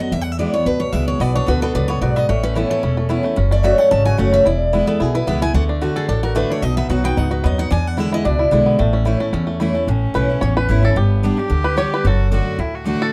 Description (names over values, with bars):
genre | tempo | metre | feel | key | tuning
bluegrass | 221 BPM | 4/4 | straight | A major | A4 = 444 Hz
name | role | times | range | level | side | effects
picked steel-string acoustic guitar | melody | 0.0-8.8 s | G#4 to A5 | -24 LUFS | equal | none
picked steel-string acoustic guitar | accompaniment | 0.0-13.1 s | E2 to G4 | -23 LUFS | equal | none
upright bass | bass | 0.1-12.9 s | E1 to E2 | -21 LUFS | equal | none
bluegrass banjo | melody | 1.2-13.1 s | A3 to C#5 | -26 LUFS | equal | none
clear fiddle | second line | 9.9-13.1 s | B3 to G4 | -28 LUFS | equal | none
room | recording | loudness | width
moderate studio ambience, RT60 0.5 s | dark, warm production | -18 LUFS | mono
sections
0.0-9.9 A section; 9.9-13.1 B section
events
five-string banjo solo 9.9-13.1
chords
0.1 E; 1.2 Bm; 2.3 Aadd9; 3.4 F#m; 4.5 E; 5.5 D; 6.6 B; 7.7 E7; 8.8 A; 11.0 G; 12.0 D/F#